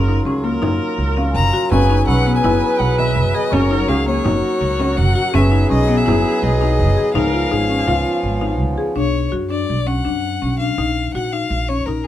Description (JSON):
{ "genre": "contemporary instrumental, chamber music in an uneven meter", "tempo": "165 BPM", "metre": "5/4", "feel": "straight", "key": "F# major", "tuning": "A4 = 440 Hz", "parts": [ { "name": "rich viola", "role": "second line", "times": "0.0-8.8 s", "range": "E#4 to B4", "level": "-23 LUFS", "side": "right 2 dB", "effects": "none" }, { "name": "pedal harmonium", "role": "sustained chords", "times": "0.0-8.9 s", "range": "E#3 to B4", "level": "-24 LUFS", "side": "equal", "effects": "none" }, { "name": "upright bass", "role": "bass", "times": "0.0-12.1 s", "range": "F#1 to F#2", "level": "-19 LUFS", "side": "right 1 dB", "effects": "none" }, { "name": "buzzing marimba with hard mallets", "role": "arpeggios", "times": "0.1-12.1 s", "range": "D#3 to G#4", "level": "-21 LUFS", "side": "left 3 dB", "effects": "none" }, { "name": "frame drum", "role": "percussion", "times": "0.3-8.7 s", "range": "none", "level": "-25 LUFS", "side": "right 2 dB", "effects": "none" }, { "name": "large celesta", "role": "texture", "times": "1.2-3.8, 7.9-9.0 s", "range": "E#5 to E6", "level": "-28 LUFS", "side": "left 5 dB", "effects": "none" }, { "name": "rich violin", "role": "melody", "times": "1.4-12.1 s", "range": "G#4 to A#5", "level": "-22 LUFS", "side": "left 5 dB", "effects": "none" } ], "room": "light reverb", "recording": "close, detailed microphones", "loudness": "-15 LUFS", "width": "side -12 dB against mid", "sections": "0.0-9.0 A section; 9.0-12.1 B section", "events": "none", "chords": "0.0 F#maj7; 1.7 Emaj7/F#; 3.5 F#; 5.3 Emaj7/F#; 7.2 C#add9; 9.0 Bmadd9; 10.8 D#sus2/A#", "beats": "0.26 0.62 0.99 1.35 | 1.71 2.08 2.44 2.80 3.17 | 3.53 3.89 4.25 4.62 4.98 | 5.34 5.70 6.07 6.43 6.79 | 7.15 7.51 7.88 8.24 8.60 | 8.96 9.33 9.69 10.05 10.42 | 10.78 11.14 11.51 11.87" }